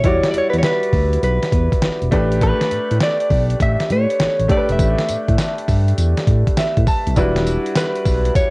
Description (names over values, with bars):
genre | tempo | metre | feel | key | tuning
R&B, new jack swing | 101 BPM | 4/4 | swing 67% on 16ths | E dorian | A4 = 440 Hz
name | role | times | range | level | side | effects
direct-recorded clean electric guitar | melody | 0.0-8.5 s | B4 to E5 | -20 LUFS | equal | spring reverb, cassette tape, plate reverb
clear concert grand piano | accompaniment | 0.0-8.5 s | G3 to A5 | -22 LUFS | equal | cassette tape, plate reverb
smooth gliding synth bass | bass | 0.0-8.4 s | E1 to A2 | -18 LUFS | equal | none
dusty soul sampler-style drum kit | drums | 0.0-8.5 s | hi-hat, kick drum, snare drum, tambourine | -19 LUFS | equal | none
room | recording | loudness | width
light reverb | home recording on cassette | -14 LUFS | side -25 dB against mid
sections
0.0-7.2 A section; 7.2-8.5 B section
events
grand piano fill 6.3-7.2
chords
0.0 Em9; 2.1 A9sus4; 7.2 Em9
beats
| 0.04 0.63 1.23 1.82 | 2.41 3.01 3.60 4.20 | 4.79 5.38 5.98 6.57 | 7.17 7.76 8.35